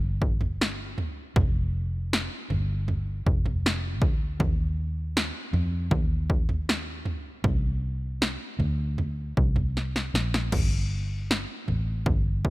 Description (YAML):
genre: pop ballad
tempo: 78 BPM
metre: 4/4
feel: straight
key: unclear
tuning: A4 = 439 Hz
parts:
  - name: vintage muted fingered electric bass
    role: bass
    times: 0.0-12.5 s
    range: F1 to F2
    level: -28 LUFS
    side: equal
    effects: none
  - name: punchy analog drum machine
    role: drums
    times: 0.2-12.5 s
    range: crash cymbal, kick drum, snare drum, toms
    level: -26 LUFS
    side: equal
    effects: none
room: little or no reverb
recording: none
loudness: -25 LUFS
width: side -19 dB against mid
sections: 0.0-12.5 A section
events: drum fill 9.8-10.5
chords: none